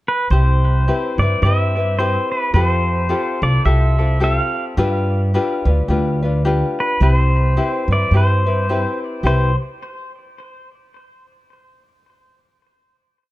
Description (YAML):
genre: Hawaiian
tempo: 108 BPM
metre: 4/4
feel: swing 59% on 8ths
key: C major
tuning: A4 = 436 Hz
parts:
  - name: pedal steel guitar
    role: melody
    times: 0.1-9.6 s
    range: B4 to F5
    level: -22 LUFS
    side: equal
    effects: tape echo
  - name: tenor ukulele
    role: accompaniment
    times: 0.3-9.5 s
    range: C4 to B4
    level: -22 LUFS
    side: left 2 dB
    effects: none
  - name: upright bass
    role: bass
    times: 0.3-9.5 s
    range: C2 to G2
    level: -16 LUFS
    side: equal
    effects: none
room: light reverb, small room ambience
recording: dark, warm production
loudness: -15 LUFS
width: side -17 dB against mid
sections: 0.0-0.3 pickup bar; 0.3-9.2 A section; 9.2-11.5 final chord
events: none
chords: 0.3 Cmaj7; 2.5 Fadd9; 4.8 G7; 7.0 Cmaj7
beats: | 0.31 0.87 1.43 1.99 | 2.55 3.11 3.66 4.22 | 4.78 5.33 5.89 6.45 | 7.00 7.56 8.12 8.68 | 9.23